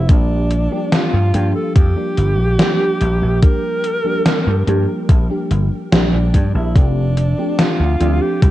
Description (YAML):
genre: vaporwave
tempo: 72 BPM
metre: 4/4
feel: straight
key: unclear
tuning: A4 = 440 Hz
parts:
  - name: warm alto saxophone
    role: melody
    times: 0.0-8.5 s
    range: D4 to Bb4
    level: -22 LUFS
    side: right 1 dB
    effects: tape echo
  - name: mellow FM electric piano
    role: accompaniment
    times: 0.0-8.5 s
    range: F3 to G4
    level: -22 LUFS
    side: right 1 dB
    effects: ensemble chorus
  - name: vintage slap bass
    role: bass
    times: 0.0-8.5 s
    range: F1 to G2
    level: -16 LUFS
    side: equal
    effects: none
  - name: electronic kick drum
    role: drums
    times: 0.1-8.5 s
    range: none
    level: -12 LUFS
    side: equal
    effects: overdrive
  - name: gated 80s digital drum machine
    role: drums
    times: 0.1-8.5 s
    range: hi-hat, snare drum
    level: -17 LUFS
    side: equal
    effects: gated reverb, gated reverb snare, overdrive
room: light reverb, digital ambience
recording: dark, warm production, cassette tape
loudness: -13 LUFS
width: side -14 dB against mid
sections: 0.0-8.5 A section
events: none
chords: 0.1 Bb6; 6.8 F69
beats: | 0.09 0.93 1.76 2.59 | 3.43 4.26 5.09 5.93 | 6.76 7.59 8.43